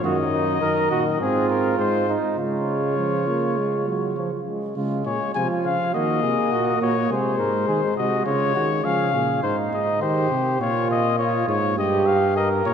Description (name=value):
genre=classical, imitative canzona for brass ensemble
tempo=102 BPM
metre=4/4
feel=straight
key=Db major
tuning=A4 = 439 Hz
part: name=mellow trumpet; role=melody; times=0.0-12.7 s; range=Ab4 to Ab5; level=-25 LUFS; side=left 6 dB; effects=none
part: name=mellow flugelhorn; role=second line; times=0.0-12.7 s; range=Eb4 to Bb4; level=-26 LUFS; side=right 4 dB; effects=none
part: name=warm trombone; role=accompaniment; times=0.0-9.4 s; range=Db3 to C4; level=-26 LUFS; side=right 1 dB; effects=none
part: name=mellow bass trombone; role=bass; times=0.0-12.7 s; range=Gb2 to F3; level=-25 LUFS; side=right 2 dB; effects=none
room=wet church reverb, RT60 3.2 s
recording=none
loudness=-20 LUFS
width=side -7 dB against mid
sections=0.0-4.8 A section; 4.8-12.7 B section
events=none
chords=0.0 Ebm/Gb; 1.2 Ab; 2.4 Db; 5.9 Ebm; 7.1 Ab; 8.3 Db; 9.4 Ab; 10.6 Bbm; 11.8 Eb/G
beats=| 0.04 0.62 1.21 1.79 | 2.39 2.98 3.58 4.17 | 4.76 5.35 5.94 6.52 | 7.11 7.68 8.27 8.85 | 9.43 10.02 10.60 11.19 | 11.77 12.36